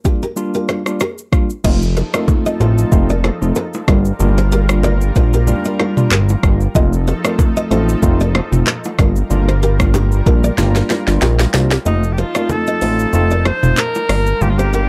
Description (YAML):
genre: afrobeats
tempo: 94 BPM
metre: 4/4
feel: swing 55% on 16ths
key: unclear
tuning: A4 = 440 Hz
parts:
  - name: tine electric piano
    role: accompaniment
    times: 0.0-14.6 s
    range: G3 to F4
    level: -23 LUFS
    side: equal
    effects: none
  - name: afro-pop drum kit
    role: drums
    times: 0.0-14.9 s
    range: crash cymbal, handclaps, hi-hat, kick drum, rim click, shaker, snare drum, toms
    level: -19 LUFS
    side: equal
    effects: none
  - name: nylon-string guitar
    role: riff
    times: 0.1-14.8 s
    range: D4 to Eb5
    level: -24 LUFS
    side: equal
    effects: delay
  - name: lush unison pad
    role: sustained chords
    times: 1.6-14.9 s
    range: F3 to A5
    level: -29 LUFS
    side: equal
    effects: chorus
  - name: fat analog bass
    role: bass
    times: 1.6-14.9 s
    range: F1 to C2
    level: -17 LUFS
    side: equal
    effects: none
  - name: congas and bongos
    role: percussion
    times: 1.6-14.9 s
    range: none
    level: -26 LUFS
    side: equal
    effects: none
  - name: bright alto saxophone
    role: melody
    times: 11.9-14.9 s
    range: Eb4 to C5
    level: -22 LUFS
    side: equal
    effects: delay
room: light reverb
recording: dark, warm production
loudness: -15 LUFS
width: mono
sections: 0.0-1.6 A section; 1.6-11.9 B section; 11.9-14.9 C section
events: drum fill 10.6-11.9; kick muted 11.9-14.9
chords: 0.0 Gm7; 1.6 F7; 3.9 Gm7; 6.8 F7; 9.0 Gm7; 11.9 F7; 14.1 Gm7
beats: 0.37 1.01 | 1.64 2.28 2.92 3.56 | 4.20 4.84 5.47 6.11 | 6.75 7.39 8.03 8.67 | 9.30 9.94 10.58 11.22 | 11.86 12.49 13.13 13.77 | 14.41